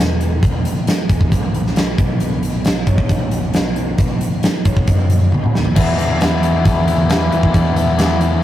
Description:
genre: quiet-loud alternative rock.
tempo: 135 BPM.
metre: 4/4.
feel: straight.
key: E major.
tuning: A4 = 441 Hz.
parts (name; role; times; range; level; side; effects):
fingerpicked steel-string acoustic guitar; arpeggios; 0.0-8.4 s; E2 to C#5; -25 LUFS; right 1 dB; none.
overdriven picked electric bass; bass; 0.0-8.4 s; E1 to B2; -19 LUFS; equal; none.
huge arena drum kit; drums; 0.0-8.3 s; crash cymbal, hi-hat, kick drum, snare drum, toms; -16 LUFS; equal; none.
overdriven electric guitar; riff; 5.8-8.4 s; E3 to E4; -18 LUFS; left 4 dB; none.
room: light reverb.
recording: rough rehearsal-room recording, warm saturation.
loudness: -13 LUFS.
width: side -12 dB against mid.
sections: 0.0-5.8 A section; 5.8-8.4 B section.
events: drum fill 5.3-5.8.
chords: 0.0 E; 2.0 Badd9; 5.8 E.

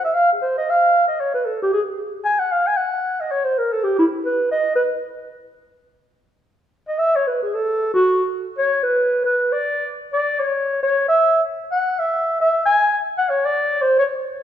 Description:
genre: jazz.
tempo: 228 BPM.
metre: 4/4.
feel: swing 60% on 8ths.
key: C# minor from 6.4 s.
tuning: A4 = 440 Hz.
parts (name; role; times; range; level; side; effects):
dark clarinet; solo; 0.0-4.8, 6.9-14.0 s; E4 to G#5; -17 LUFS; equal; none.
room: wet recital hall reverb, RT60 1.6 s.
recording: recorded in a church or concert hall.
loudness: -17 LUFS.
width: side -10 dB against mid.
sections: 0.0-6.4 A section; 6.4-14.4 B section.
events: none.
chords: none.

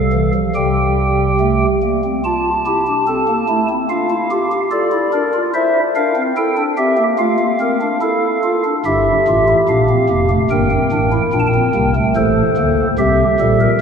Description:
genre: classical, baroque-style 4-part fugue for pipe organ.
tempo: 72 BPM.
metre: 4/4.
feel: straight.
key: F major.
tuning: A4 = 440 Hz.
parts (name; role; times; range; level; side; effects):
pipe organ, stopped flute; solo; 0.0-13.8 s; F1 to A5; -13 LUFS; equal; none.
room: wet cathedral reverb, RT60 4.5 s.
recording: recorded in a church or concert hall.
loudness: -13 LUFS.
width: side -6 dB against mid.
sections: 0.0-2.2 A section; 2.2-8.9 B section; 8.9-13.8 A section.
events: none.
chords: 0.0 Csus4; 0.5 C5; 2.2 F; 3.9 Gm7/D; 5.5 C; 7.2 F/A; 8.9 Gm; 10.5 Edim/G (rootless); 12.2 Am.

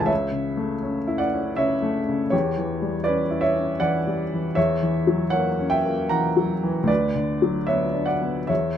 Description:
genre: classical, romantic nocturne for solo piano.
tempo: 80 BPM.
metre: 3/4.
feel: uneven beats, rubato.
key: B minor.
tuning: A4 = 439 Hz.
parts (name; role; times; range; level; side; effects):
clear upright piano; solo; 0.0-8.8 s; C#2 to B5; -21 LUFS; equal; none.
room: light reverb.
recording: close, detailed microphones.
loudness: -21 LUFS.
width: side -9 dB against mid.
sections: 0.0-8.8 A section.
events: none.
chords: 0.1 A/C#; 2.3 C#dim/E; 4.6 F#7/E; 6.9 Bm/D.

